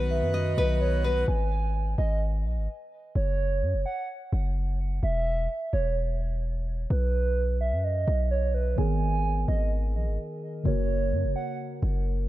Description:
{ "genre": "hip hop", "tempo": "128 BPM", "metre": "4/4", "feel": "half-time", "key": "unclear", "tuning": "A4 = 440 Hz", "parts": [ { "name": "nylon-string guitar", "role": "melody", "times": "0.0-1.2 s", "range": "B4 to D#5", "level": "-30 LUFS", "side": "left 4 dB", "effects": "digital delay" }, { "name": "hollow clarinet-like synth lead", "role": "second line", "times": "0.0-11.6 s", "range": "B4 to G#5", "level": "-32 LUFS", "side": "right 4 dB", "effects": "chorus, digital delay" }, { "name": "muted felt-like synth keys", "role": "accompaniment", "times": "0.0-1.3, 8.8-12.3 s", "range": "C#3 to B4", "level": "-32 LUFS", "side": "equal", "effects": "chorus, phaser" }, { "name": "pipe organ, plenum", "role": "sustained chords", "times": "0.0-1.3 s", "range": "D#3 to F#4", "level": "-36 LUFS", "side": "equal", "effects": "none" }, { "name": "hard-hitting 808-style bass", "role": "bass", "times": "0.0-12.3 s", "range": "E1 to F#2", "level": "-26 LUFS", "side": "equal", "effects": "none" } ], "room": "light reverb, studio reverb", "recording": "dark, warm production", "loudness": "-25 LUFS", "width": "side -15 dB against mid", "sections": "0.0-1.3 A section; 1.3-12.3 B section", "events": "break 1.3-8.8", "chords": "0.0 B; 1.3 N.C.; 3.2 F#5; 5.0 N.C.; 6.9 B; 8.8 G#madd9; 10.7 F#" }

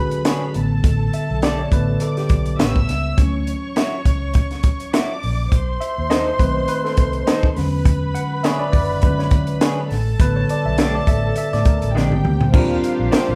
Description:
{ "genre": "lush 1970s-style soul", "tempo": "103 BPM", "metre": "4/4", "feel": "swing 54% on 16ths", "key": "unclear", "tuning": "A4 = 440 Hz", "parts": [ { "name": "warm chamber string section", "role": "second line", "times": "0.0-13.4 s", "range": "D4 to E6", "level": "-29 LUFS", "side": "equal", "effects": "slapback echo" }, { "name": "tine electric piano", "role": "accompaniment", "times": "0.0-13.4 s", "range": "C#3 to F#5", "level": "-24 LUFS", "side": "equal", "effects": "overdrive" }, { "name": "vintage muted fingered electric bass", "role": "bass", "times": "0.0-13.4 s", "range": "F#1 to A2", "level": "-26 LUFS", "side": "equal", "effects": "none" }, { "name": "compact cocktail drum kit", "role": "drums", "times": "0.1-13.3 s", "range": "crash cymbal, hi-hat, kick drum, snare drum, toms", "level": "-20 LUFS", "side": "equal", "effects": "none" }, { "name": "electric guitar through a small old amp", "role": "riff", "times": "0.3-13.3 s", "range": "Ab3 to D5", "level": "-29 LUFS", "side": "equal", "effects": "none" }, { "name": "warm studio string section", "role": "sustained chords", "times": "12.5-13.4 s", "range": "D3 to G4", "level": "-32 LUFS", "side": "equal", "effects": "none" } ], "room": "moderate large studio reverb, RT60 0.9 s", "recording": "band playing live in one room", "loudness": "-19 LUFS", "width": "mono", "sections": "0.0-12.5 A section", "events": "tine electric piano solo 0.0-12.5; drum fill 11.9-12.5", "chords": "0.0 E13 (rootless); 0.5 A7sus4; 2.6 A9; 3.2 Dmaj9; 5.5 B7b9; 7.6 E13; 9.9 A7sus4; 11.9 Bb13; 12.5 Ebmaj13" }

